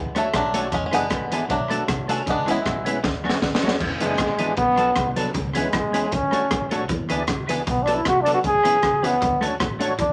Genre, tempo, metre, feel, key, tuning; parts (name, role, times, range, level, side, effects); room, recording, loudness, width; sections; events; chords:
ska; 156 BPM; 4/4; swing 53% on 8ths; E mixolydian; A4 = 440 Hz
bluegrass banjo; melody; 0.0-3.2 s; D3 to E4; -27 LUFS; equal
clean electric guitar; riff; 0.0-10.1 s; E2 to E3; -38 LUFS; equal
upright bass; bass; 0.0-10.1 s; E1 to E2; -36 LUFS; equal
percussive tonewheel organ; stabs; 0.1-9.9 s; C#4 to D5; -32 LUFS; equal; chorus vibrato, slow rotary speaker
clean electric guitar; accompaniment; 0.2-9.9 s; E3 to A4; -30 LUFS; equal; harmonic tremolo
crunchy breakbeat drum kit; drums; 0.2-10.1 s; crash cymbal, hi-hat, kick drum, rim click, snare drum; -28 LUFS; equal; tape echo
clear trombone; melody; 4.0-10.1 s; G#3 to G#4; -23 LUFS; equal
moderate club ambience, RT60 0.5 s; -22 LUFS; mono
0.0-3.8 A section; 3.8-10.1 B section
drum fill 3.0-3.8; trombone solo 3.8-10.1
0.0 Dmaj7; 0.7 E7; 1.5 Bm7; 2.3 C#m7; 3.0 Dmaj7; 3.8 E7; 4.6 Bm7; 5.4 C#m7; 6.1 Dmaj7; 6.9 E7; 7.7 Bm7; 8.4 C#m7; 9.2 Dmaj7